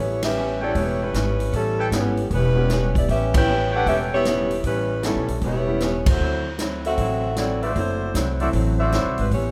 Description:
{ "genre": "jazz, big band swing", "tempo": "154 BPM", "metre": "4/4", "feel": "swing 66% on 8ths", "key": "A mixolydian", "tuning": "A4 = 439 Hz", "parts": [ { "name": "dark saxophone section", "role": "melody", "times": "0.0-9.5 s", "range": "E3 to G5", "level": "-26 LUFS", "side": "equal", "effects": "none" }, { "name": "archtop guitar, miked and amplified", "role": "accompaniment", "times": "0.0-9.5 s", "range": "A2 to E4", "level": "-33 LUFS", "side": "equal", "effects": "none" }, { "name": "upright bass", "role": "bass", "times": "0.0-9.5 s", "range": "E1 to D2", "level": "-27 LUFS", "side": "equal", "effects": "none" }, { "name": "swinging big-band drum kit", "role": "drums", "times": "0.2-9.4 s", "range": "hi-hat, kick drum, ride cymbal, snare drum", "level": "-28 LUFS", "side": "equal", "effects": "none" }, { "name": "clear concert grand piano", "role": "accompaniment", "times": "0.6-5.8, 8.4-8.9 s", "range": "F#3 to G4", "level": "-32 LUFS", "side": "equal", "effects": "none" }, { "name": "clear trumpet section", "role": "stabs", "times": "0.6-4.2, 7.6-9.3 s", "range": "F#4 to G5", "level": "-30 LUFS", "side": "equal", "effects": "none" } ], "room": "light reverb", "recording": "none", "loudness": "-22 LUFS", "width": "mono", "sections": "0.0-9.5 A section", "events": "band accent 0.2, 3.3, 6.0", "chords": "0.0 A9; 6.2 D9", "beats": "0.36 0.75 1.14 | 1.53 1.92 2.31 2.69 | 3.08 3.47 3.86 4.25 | 4.64 5.03 5.42 5.81 | 6.20 6.59 6.98 7.37 | 7.75 8.14 8.53 8.92 | 9.31" }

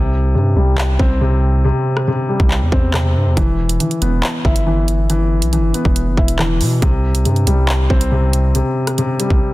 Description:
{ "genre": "hip hop, drill", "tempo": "139 BPM", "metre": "4/4", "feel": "half-time", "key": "unclear", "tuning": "A4 = 440 Hz", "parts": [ { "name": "dark baby grand piano", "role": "accompaniment", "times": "0.0-9.5 s", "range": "C3 to E4", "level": "-18 LUFS", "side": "left 1 dB", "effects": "low-pass filter" }, { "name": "long sustained 808-style bass", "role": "bass", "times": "0.0-9.4 s", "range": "E1 to B2", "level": "-16 LUFS", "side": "equal", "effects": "none" }, { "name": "drill drum kit", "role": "drums", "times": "0.8-9.4 s", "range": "handclaps, hi-hat, kick drum, rim click", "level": "-18 LUFS", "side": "equal", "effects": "none" } ], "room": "little or no reverb", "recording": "dense, heavily limited modern master", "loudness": "-13 LUFS", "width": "side -18 dB against mid", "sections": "0.0-9.5 A section", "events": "break 0.0-3.4", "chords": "0.0 C; 3.4 Em; 6.8 C5", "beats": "0.35 0.78 1.21 | 1.64 2.08 2.51 2.94 | 3.37 3.80 4.23 4.66 | 5.10 5.53 5.96 6.39 | 6.82 7.25 7.69 8.12 | 8.55 8.98 9.41" }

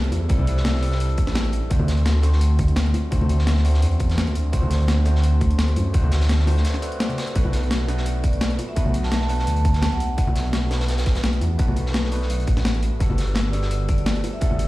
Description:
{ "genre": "liquid drum and bass", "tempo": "170 BPM", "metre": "4/4", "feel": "straight", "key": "unclear", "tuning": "A4 = 442 Hz", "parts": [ { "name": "overdriven tine electric piano", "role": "accompaniment", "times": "0.0-14.7 s", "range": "G3 to D5", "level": "-30 LUFS", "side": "equal", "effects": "phaser, digital delay" }, { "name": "dark detuned saw bass", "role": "bass", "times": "0.0-14.7 s", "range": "G1 to F#2", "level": "-20 LUFS", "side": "equal", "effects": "none" }, { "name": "breakbeat sampler-style drum kit", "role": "drums", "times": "0.0-14.7 s", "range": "hi-hat, snare drum", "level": "-27 LUFS", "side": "left 1 dB", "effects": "studio reverb" }, { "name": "crunchy breakbeat drum kit", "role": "drums", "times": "0.1-14.7 s", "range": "hi-hat, snare drum", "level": "-34 LUFS", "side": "equal", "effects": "high-pass filter on hats, studio reverb, high-pass filter on snare, high-pass filter on room" }, { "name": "bongos and congas", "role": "percussion", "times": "0.1-14.6 s", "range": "none", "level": "-28 LUFS", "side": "left 2 dB", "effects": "none" }, { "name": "electronic kick drum", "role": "drums", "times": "0.3-14.5 s", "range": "none", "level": "-20 LUFS", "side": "equal", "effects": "studio reverb" }, { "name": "vibraphone with medium hard mallets", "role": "melody", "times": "8.2-10.4, 13.9-14.5 s", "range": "D5 to A5", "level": "-31 LUFS", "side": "right 2 dB", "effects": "digital delay" } ], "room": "small room ambience", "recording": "played on a big sound system in a bare room, large studio reverb", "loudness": "-18 LUFS", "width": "side -18 dB against mid", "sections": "0.0-14.7 A section", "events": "break 6.6-7.4", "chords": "0.0 C69; 1.7 D7; 7.4 Bm7; 13.0 Gmaj9", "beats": "| 0.30 0.65 1.00 1.35 | 1.71 2.06 2.41 2.77 | 3.12 3.47 3.83 4.18 | 4.53 4.88 5.24 5.59 | 5.94 6.30 6.65 7.00 | 7.36 7.71 8.06 8.41 | 8.77 9.12 9.47 9.83 | 10.18 10.53 10.88 11.24 | 11.59 11.94 12.30 12.65 | 13.00 13.36 13.71 14.06 | 14.41" }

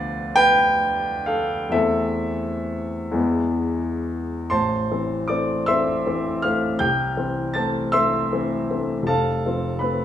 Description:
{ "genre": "classical, romantic nocturne for solo piano", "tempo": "38-56 BPM (dotted quarters)", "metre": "6/8", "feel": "rubato", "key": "A minor", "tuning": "A4 = 442 Hz", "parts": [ { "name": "warm baby grand piano", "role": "solo", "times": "0.0-10.0 s", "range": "F1 to A6", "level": "-20 LUFS", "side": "left 1 dB", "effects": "none" } ], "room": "moderate recital hall reverb, RT60 1.6 s", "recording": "minimal, uncompressed stereo recording", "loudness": "-20 LUFS", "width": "side -10 dB against mid", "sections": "0.0-4.5 A section; 4.5-10.0 B section", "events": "none", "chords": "0.0 Bdim/D; 1.7 Am/E; 3.2 E; 4.5 Am; 6.8 Am/C; 9.1 F", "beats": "0.37 | 1.73 3.15 | 4.51 5.68 | 6.81 7.93 | 9.08" }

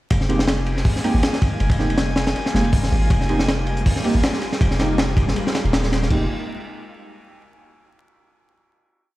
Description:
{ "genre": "drum and bass, jungle", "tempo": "160 BPM", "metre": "4/4", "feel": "swing 54% on 16ths", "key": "F minor", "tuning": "A4 = 440 Hz", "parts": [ { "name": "soft string machine", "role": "sustained chords", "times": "0.3-6.2 s", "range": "G3 to F4", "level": "-29 LUFS", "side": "equal", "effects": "phaser, ensemble chorus, vintage 12-bit sampler grit" }, { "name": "long sustained 808-style bass", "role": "bass", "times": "0.1-6.3 s", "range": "Eb1 to Ab1", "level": "-21 LUFS", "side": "equal", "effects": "none" }, { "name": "crunchy breakbeat drum kit", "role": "drums", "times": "0.1-6.2 s", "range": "crash cymbal, hi-hat, kick drum, ride cymbal, snare drum", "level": "-20 LUFS", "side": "equal", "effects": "none" }, { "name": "drifting glass-harmonics texture", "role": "texture", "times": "0.6-6.1 s", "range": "Ab5", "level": "-34 LUFS", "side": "left 1 dB", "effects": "chorus, built-in reverb" }, { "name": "deep mellow chord stab", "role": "stabs", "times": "0.3-6.2 s", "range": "Ab3 to G4", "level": "-26 LUFS", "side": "right 1 dB", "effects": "chorus, dub echo" }, { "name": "crunchy breakbeat drum kit", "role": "drums", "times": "3.1-6.0 s", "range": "hi-hat, shaker, snare drum", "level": "-39 LUFS", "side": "left 1 dB", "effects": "none" } ], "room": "light reverb, small room ambience", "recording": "played on a big sound system in a bare room, stone room reverb, vinyl crackle", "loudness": "-17 LUFS", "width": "side -17 dB against mid", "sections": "0.1-6.1 drop; 6.1-7.6 final chord", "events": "drop 0.1-6.1", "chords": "0.1 Fm11", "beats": "| 0.11 0.48 0.86 1.23 | 1.61 1.98 2.36 2.73 | 3.11 3.48 3.86 4.23 | 4.61 4.98 5.36 5.73 | 6.11" }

